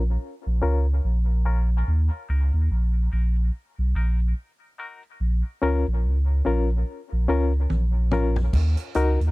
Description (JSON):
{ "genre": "dub reggae", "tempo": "72 BPM", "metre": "4/4", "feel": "swing 59% on 16ths", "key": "Eb minor", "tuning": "A4 = 440 Hz", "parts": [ { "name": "barky reed electric piano", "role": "stabs", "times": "0.0-9.2 s", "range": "Db4 to Bb4", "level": "-28 LUFS", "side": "left 4 dB", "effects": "overdrive, fast tremolo, high-pass filter, low-pass filter, dub echo" }, { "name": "warm sub bass", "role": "bass", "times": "0.0-9.3 s", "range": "Bb1 to Eb2", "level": "-21 LUFS", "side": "equal", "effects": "none" }, { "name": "vintage drum kit", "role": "drums", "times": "7.7-9.3 s", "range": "crash cymbal, hi-hat, kick drum, toms", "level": "-29 LUFS", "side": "equal", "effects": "none" } ], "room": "little or no reverb", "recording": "dry, close 1970s-style studio recording", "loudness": "-21 LUFS", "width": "side -21 dB against mid", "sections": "0.0-8.5 A section", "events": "filter sweep on reed electric piano 0.0-5.2; drum fill 7.7-8.5", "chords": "0.0 Bbm; 1.9 Ebm; 5.2 Bbm; 8.5 Ebm" }